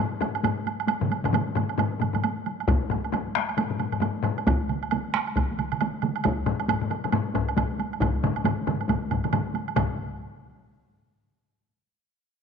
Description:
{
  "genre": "japanese traditional, taiko drum ensemble",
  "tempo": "135 BPM",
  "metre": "4/4",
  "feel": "swing 60% on 16ths",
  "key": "none",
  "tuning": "none",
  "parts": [
    { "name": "taiko ensemble", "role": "percussion", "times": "0.2-10.0 s", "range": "none", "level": "-30 LUFS", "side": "right 1 dB", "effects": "none" },
    { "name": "taiko ensemble", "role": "percussion", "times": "0.2-10.2 s", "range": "none", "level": "-28 LUFS", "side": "left 7 dB", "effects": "none" },
    { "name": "woodblock", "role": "percussion", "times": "0.2-10.0 s", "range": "none", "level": "-31 LUFS", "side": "right 10 dB", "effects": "none" },
    { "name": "taiko ensemble", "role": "percussion", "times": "1.0-10.2 s", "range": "none", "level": "-31 LUFS", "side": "right 8 dB", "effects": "none" },
    { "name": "taiko ensemble", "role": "percussion", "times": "2.7-10.0 s", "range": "none", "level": "-28 LUFS", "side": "left 1 dB", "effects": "none" }
  ],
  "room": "moderate echo chamber reverb, RT60 1.7 s, small room ambience",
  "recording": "1960s-style stereo with parts hard left and right",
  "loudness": "-24 LUFS",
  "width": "side -6 dB against mid",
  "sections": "0.0-9.8 A section; 9.8-11.5 B section",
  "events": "speeding up 0.0-11.5",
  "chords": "none"
}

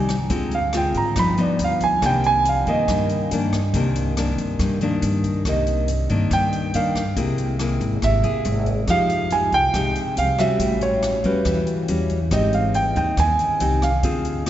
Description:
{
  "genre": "bossa nova",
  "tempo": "140 BPM",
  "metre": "4/4",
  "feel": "straight",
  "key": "C minor",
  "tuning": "A4 = 440 Hz",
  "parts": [
    { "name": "warm concert grand piano", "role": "melody", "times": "0.0-14.4 s", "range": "B4 to B5", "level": "-22 LUFS", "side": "right 3 dB", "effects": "none" },
    { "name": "nylon-string guitar", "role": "accompaniment", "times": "0.0-14.5 s", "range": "G2 to G#4", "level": "-23 LUFS", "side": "left 2 dB", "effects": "none" },
    { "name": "upright bass", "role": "bass", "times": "0.0-14.5 s", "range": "G1 to Ab2", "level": "-24 LUFS", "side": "equal", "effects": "none" },
    { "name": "swinging big-band drum kit", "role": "drums", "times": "0.1-14.5 s", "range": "hi-hat, kick drum, rim click", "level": "-30 LUFS", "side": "equal", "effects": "none" }
  ],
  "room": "wet cathedral reverb, RT60 7.1 s",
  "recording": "recorded in a church or concert hall, nothing above 7.9 kHz",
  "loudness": "-18 LUFS",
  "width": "side -12 dB against mid",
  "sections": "0.0-5.5 A section; 5.5-14.5 B section",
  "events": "grand piano solo 0.0-5.5",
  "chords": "0.3 Dm7b5; 1.2 G7b13; 2.0 Cm9; 7.2 Caug7; 8.9 Fm9; 10.6 A13; 12.3 Abmaj7"
}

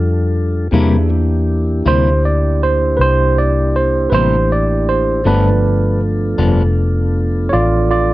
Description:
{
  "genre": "blues",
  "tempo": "53 BPM (dotted quarters)",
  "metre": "12/8",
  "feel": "straight",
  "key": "unclear",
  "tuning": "A4 = 440 Hz",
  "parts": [
    { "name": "mellow tonewheel organ", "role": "sustained chords", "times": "0.0-8.1 s", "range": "G3 to A4", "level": "-21 LUFS", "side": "equal", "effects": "slow rotary speaker" },
    { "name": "vintage muted fingered electric bass", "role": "bass", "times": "0.0-8.1 s", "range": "F1 to F2", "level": "-15 LUFS", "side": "left 1 dB", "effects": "none" },
    { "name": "barky tine electric piano", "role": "accompaniment", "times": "0.7-8.1 s", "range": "E3 to D5", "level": "-17 LUFS", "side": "right 3 dB", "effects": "auto-pan" },
    { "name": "clean electric guitar", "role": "accompaniment", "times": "0.7-6.6 s", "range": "G2 to E4", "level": "-18 LUFS", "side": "left 4 dB", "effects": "harmonic tremolo" }
  ],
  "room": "light reverb",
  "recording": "worn, warbling old tape, cassette tape, warbly pitch drift",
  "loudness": "-12 LUFS",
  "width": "side -17 dB against mid",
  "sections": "0.0-8.1 A section",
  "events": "tine electric piano solo 0.0-8.1",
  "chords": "0.0 G7(no3); 0.7 C7; 5.3 G7"
}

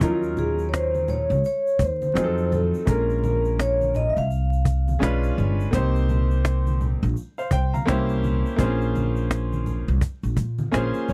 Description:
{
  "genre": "hip hop, jazz-hop",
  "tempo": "84 BPM",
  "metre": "4/4",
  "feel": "swing 61% on 16ths",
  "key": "Bb minor",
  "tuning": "A4 = 438 Hz",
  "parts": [
    { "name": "vibraphone with medium mallets", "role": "melody", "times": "0.0-5.3 s", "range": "F4 to F5", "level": "-27 LUFS", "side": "equal", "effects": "none" },
    { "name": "clear upright piano", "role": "accompaniment", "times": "0.0-11.1 s", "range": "Gb3 to Bb5", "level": "-29 LUFS", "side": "equal", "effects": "none" },
    { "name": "upright bass", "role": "bass", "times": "0.0-11.1 s", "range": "G1 to Bb2", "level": "-26 LUFS", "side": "equal", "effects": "none" },
    { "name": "cajon", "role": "drums", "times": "0.0-11.1 s", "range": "none", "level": "-25 LUFS", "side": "equal", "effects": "none" },
    { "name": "tube shaker and congas", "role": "percussion", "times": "0.0-11.1 s", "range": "none", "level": "-35 LUFS", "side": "equal", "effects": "none" }
  ],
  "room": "little or no reverb",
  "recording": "dry, close 1970s-style studio recording, vinyl crackle",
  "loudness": "-23 LUFS",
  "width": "mono",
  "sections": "0.0-11.1 A section",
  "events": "upright piano fill 10.4-11.1",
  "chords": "0.0 Ebm9; 2.2 F7b9; 2.9 Bbm7; 5.0 Bdim7; 5.7 Cm7; 7.9 C7b9; 8.6 Bbm9"
}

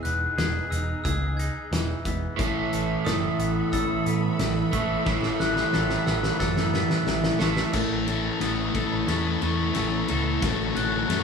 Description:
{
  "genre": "post-rock",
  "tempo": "90 BPM",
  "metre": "4/4",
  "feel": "straight",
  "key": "A lydian",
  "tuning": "A4 = 439 Hz",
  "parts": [
    { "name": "rich studio string section", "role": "sustained chords", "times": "0.0-11.2 s", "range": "D#4 to C#6", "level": "-36 LUFS", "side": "left 2 dB", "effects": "none" },
    { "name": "glockenspiel with brass mallets", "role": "arpeggios", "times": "0.0-11.2 s", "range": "C#6 to A6", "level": "-33 LUFS", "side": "left 1 dB", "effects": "none" },
    { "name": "twangy electric guitar", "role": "arpeggios", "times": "0.0-11.2 s", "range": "E2 to A4", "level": "-34 LUFS", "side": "left 2 dB", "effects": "none" },
    { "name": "picked electric bass", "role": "bass", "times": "0.0-11.2 s", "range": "E1 to A2", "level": "-30 LUFS", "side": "equal", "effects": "none" },
    { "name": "loose indie drum kit", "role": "drums", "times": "0.1-11.2 s", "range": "crash cymbal, hi-hat, kick drum, ride cymbal, snare drum", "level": "-29 LUFS", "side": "left 1 dB", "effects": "none" },
    { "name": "overdriven electric guitar", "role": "riff", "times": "2.4-7.7 s", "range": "A2 to A3", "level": "-26 LUFS", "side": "right 4 dB", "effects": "none" },
    { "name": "sludgy distorted guitar", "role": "riff", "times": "7.7-11.2 s", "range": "A3 to A4", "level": "-25 LUFS", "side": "left 5 dB", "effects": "overdrive" }
  ],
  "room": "moderate stone room reverb, RT60 1.2 s",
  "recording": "band playing live in one room, studio reverb",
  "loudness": "-22 LUFS",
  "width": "side -6 dB against mid",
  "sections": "0.0-7.7 A section; 7.7-11.2 B section",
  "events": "drum fill 5.1-7.7, 7.7-11.2; build-up 7.7-11.2",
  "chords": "0.0 Emaj7; 2.4 Asus2; 7.7 Aadd9; 10.4 F#m/A"
}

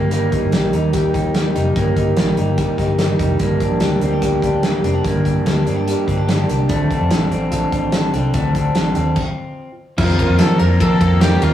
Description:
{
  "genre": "jangly indie pop",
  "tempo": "146 BPM",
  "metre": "4/4",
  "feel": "straight",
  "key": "G minor",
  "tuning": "A4 = 441 Hz",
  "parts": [
    { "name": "electric guitar through a small old amp", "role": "accompaniment", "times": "0.0-11.5 s", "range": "G2 to Bb4", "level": "-22 LUFS", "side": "right 2 dB", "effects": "none" },
    { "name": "electric guitar through a small old amp", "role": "arpeggios", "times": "0.0-11.5 s", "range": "F3 to G4", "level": "-22 LUFS", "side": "equal", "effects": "spring reverb" },
    { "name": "vintage muted fingered electric bass", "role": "bass", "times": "0.0-11.5 s", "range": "F1 to F3", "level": "-19 LUFS", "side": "equal", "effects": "none" },
    { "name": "modern studio drum kit", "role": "drums", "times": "0.1-11.5 s", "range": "crash cymbal, hi-hat, kick drum, ride cymbal, snare drum", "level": "-20 LUFS", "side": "equal", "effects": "none" },
    { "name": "biting lead guitar", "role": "melody", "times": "10.0-11.5 s", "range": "F4 to Bb4", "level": "-22 LUFS", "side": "left 1 dB", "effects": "overdrive" },
    { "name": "glockenspiel with hard plastic mallets", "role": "second line", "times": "10.0-11.5 s", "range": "F6 to Bb6", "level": "-29 LUFS", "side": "left 2 dB", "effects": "digital delay" },
    { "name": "mellow reed electric piano", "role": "accompaniment", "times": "10.0-11.5 s", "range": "Bb3 to C5", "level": "-29 LUFS", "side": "left 6 dB", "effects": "none" }
  ],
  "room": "light reverb",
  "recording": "rough rehearsal-room recording, tube saturation, small room ambience",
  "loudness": "-14 LUFS",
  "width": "side -11 dB against mid",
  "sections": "0.0-10.0 A section; 10.0-11.5 B section",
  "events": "stop 9.2-10.0",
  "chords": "0.0 Eb; 3.4 Gm; 6.7 Dm7; 10.0 Fsus4"
}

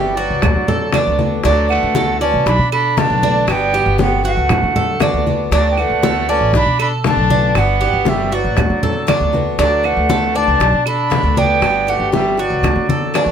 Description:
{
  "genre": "latin, Cuban son and guajira",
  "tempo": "118 BPM",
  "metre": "4/4",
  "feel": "straight",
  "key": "D major",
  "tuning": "A4 = 440 Hz",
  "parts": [
    { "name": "silver concert flute", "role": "melody", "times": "0.0-13.3 s", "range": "D5 to B5", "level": "-18 LUFS", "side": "right 3 dB", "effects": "none" },
    { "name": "bright trumpet", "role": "second line", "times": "0.0-13.3 s", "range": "F#3 to D4", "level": "-26 LUFS", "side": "left 5 dB", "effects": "none" },
    { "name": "picked steel-string acoustic guitar", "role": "accompaniment", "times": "0.0-13.3 s", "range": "B2 to F#4", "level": "-24 LUFS", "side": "left 4 dB", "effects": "none" },
    { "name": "Cuban tres", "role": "arpeggios", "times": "0.0-13.3 s", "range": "D4 to D5", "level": "-20 LUFS", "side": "right 4 dB", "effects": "none" },
    { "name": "upright bass", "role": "bass", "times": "0.0-13.3 s", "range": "G1 to D3", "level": "-20 LUFS", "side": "equal", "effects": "none" },
    { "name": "bongos", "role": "percussion", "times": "0.2-13.3 s", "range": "none", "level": "-23 LUFS", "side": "left 6 dB", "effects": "none" },
    { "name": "congas", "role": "percussion", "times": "0.2-13.0 s", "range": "none", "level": "-21 LUFS", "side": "left 2 dB", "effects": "none" },
    { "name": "claves", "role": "percussion", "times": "0.4-13.3 s", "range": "none", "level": "-26 LUFS", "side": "right 12 dB", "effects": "none" }
  ],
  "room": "moderate studio ambience, RT60 0.5 s",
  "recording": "none",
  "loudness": "-13 LUFS",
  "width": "side -8 dB against mid",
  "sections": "0.0-13.3 A section",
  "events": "drum fill 12.6-13.3",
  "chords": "0.4 D6; 2.5 Bm7; 3.5 Gmaj7; 4.5 D6; 6.5 Bm7; 7.6 Gmaj7; 8.6 D6; 10.6 Bm7; 11.6 Gmaj7; 12.6 D6"
}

